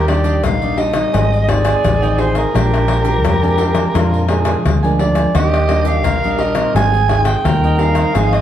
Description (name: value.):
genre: samba and choro.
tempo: 86 BPM.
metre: 4/4.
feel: straight.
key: Eb major.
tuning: A4 = 438 Hz.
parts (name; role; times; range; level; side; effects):
growling soprano saxophone; melody; 0.0-8.4 s; Bb4 to Ab5; -19 LUFS; equal; none.
breathy tenor saxophone; second line; 0.0-8.4 s; Eb4 to Bb4; -22 LUFS; right 6 dB; none.
cavaquinho; accompaniment; 0.0-8.4 s; D4 to Ab5; -25 LUFS; right 4 dB; none.
nylon-string guitar; accompaniment; 0.0-8.4 s; F2 to Eb4; -21 LUFS; left 2 dB; none.
vintage muted fingered electric bass; bass; 0.0-8.4 s; Ab1 to F2; -17 LUFS; equal; none.
pandeiro, tamborim, egg shaker and surdo; percussion; 0.1-8.4 s; none; -20 LUFS; left 5 dB; none.
room: moderate large studio reverb, RT60 1.2 s.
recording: none.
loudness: -12 LUFS.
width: side -10 dB against mid.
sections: 0.0-8.4 A section.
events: none.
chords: 0.0 Ebmaj7; 1.1 Abmaj7; 2.5 Bb7; 5.3 Ebmaj7; 6.7 Abmaj7.